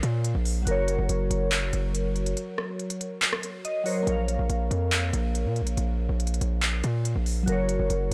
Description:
hip hop, trap; 141 BPM; 4/4; half-time; Bb minor; A4 = 440 Hz
glassy digital keys; accompaniment; 0.0-8.1 s; Gb3 to F5; -32 LUFS; equal; chorus, low-pass filter
hard-hitting 808-style bass; bass; 0.0-8.1 s; Gb1 to Bb2; -28 LUFS; equal
trap drum kit; drums; 0.0-8.1 s; handclaps, hi-hat, rim click; -32 LUFS; equal; vintage 12-bit sampler grit
digital ambience; -27 LUFS; mono
0.0-4.1 A section; 4.1-8.1 B section
break 2.4-4.1
0.0 Bbm; 0.7 Gb; 4.1 Bbm; 7.5 Gb

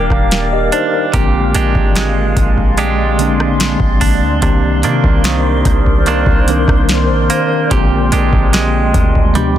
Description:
contemporary R&B; 73 BPM; 4/4; straight; A4 = 440 Hz
mellow tine electric piano; accompaniment; 0.0-9.6 s; D3 to G5; -17 LUFS; left 1 dB; medium stereo tremolo
granular cloud pad; sustained chords; 0.0-9.6 s; Ab3 to D6; -20 LUFS; left 1 dB; built-in reverb
direct-recorded clean electric guitar; arpeggios; 0.0-9.6 s; Bb2 to G4; -18 LUFS; right 6 dB; digital delay
warm 808-style bass; bass; 0.0-9.6 s; Eb1 to C3; -16 LUFS; equal
booming analog drum machine; drums; 0.1-9.6 s; hi-hat, kick drum, rim click, snare drum, toms; -15 LUFS; equal; overdrive
little or no reverb; dense, heavily limited modern master; -10 LUFS; side -11 dB against mid
0.0-9.6 A section
drum fill 9.4
0.0 Ebmaj7; 1.1 Bb13; 4.4 Cm9

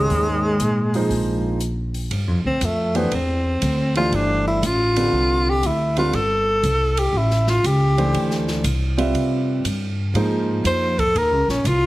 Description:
modal jazz; 120 BPM; 4/4; swing 67% on 8ths; A4 = 442 Hz
breathy tenor saxophone; melody; 0.0-11.9 s; Ab3 to C5; -20 LUFS; equal; plate reverb
breathy trombone; second line; 0.0-1.6 s; Ab2; -28 LUFS; left 3 dB
warm concert grand piano; accompaniment; 0.0-10.9 s; D3 to E5; -23 LUFS; right 1 dB
upright bass; bass; 0.0-11.9 s; G1 to C3; -22 LUFS; equal
open jazz drum kit; drums; 0.1-11.8 s; hi-hat, kick drum, ride cymbal, snare drum; -31 LUFS; right 1 dB
moderate large studio reverb, RT60 0.9 s; heavily compressed radio sound; -18 LUFS; side -17 dB against mid
0.0-2.1 A section; 2.1-11.9 B section
tenor saxophone solo 2.1-11.9
0.0 Eb9sus4; 2.1 G9sus4; 10.1 Ebsus4

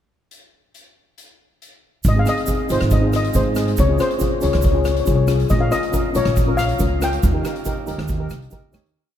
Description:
calypso; 139 BPM; 4/4; straight; Ab major; A4 = 440 Hz
street-band drum kit; drums; 0.3-9.0 s; hi-hat, kick drum, rim click; -23 LUFS; equal
upright bass; bass; 2.0-8.9 s; Ab1 to Ab2; -20 LUFS; equal
tube shaker; percussion; 2.0-8.8 s; -34 LUFS; right 10 dB
steel pan; melody; 2.1-8.7 s; C5 to G5; -23 LUFS; left 3 dB
steel pan; accompaniment; 2.1-8.9 s; C4 to Db5; -24 LUFS; left 2 dB
moderate cathedral reverb, RT60 5.8 s; in a vast, echoing space; -16 LUFS; side -10 dB against mid
0.3-2.0 pickup bar; 2.0-9.0 verse
fade-out 7.2-9.0
0.3 N.C.; 2.0 Ab; 3.8 Dbmaj7; 5.5 Bbm; 7.2 Eb

